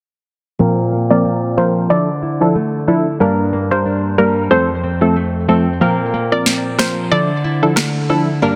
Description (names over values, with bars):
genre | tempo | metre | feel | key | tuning
dancehall | 92 BPM | 4/4 | swing 56% on 16ths | D minor | A4 = 439 Hz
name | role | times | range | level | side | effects
wavetable chord stab | accompaniment | 0.6-8.6 s | F3 to Bb4 | -18 LUFS | equal | low-pass filter
nylon-string guitar | arpeggios | 0.6-8.6 s | F2 to E4 | -21 LUFS | equal | low-pass filter, digital delay
hollow square pluck | melody | 1.1-7.6 s | Bb4 to D5 | -21 LUFS | equal | chorus, low-pass filter, digital delay
electronic snare drum and rim click | drums | 6.5-7.9 s | none | -21 LUFS | equal | none
room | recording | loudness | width
light reverb | dense, heavily limited modern master | -16 LUFS | mono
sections
0.6-8.6 A section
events
filter sweep 0.6-8.6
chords
0.6 Bbsus2; 1.9 Dmadd9; 3.2 Gm; 4.5 F; 5.8 Bbsus2; 7.1 Dmadd9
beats
| 0.60 1.25 1.90 2.55 | 3.21 3.86 4.51 5.16 | 5.81 6.47 7.12 7.77 | 8.42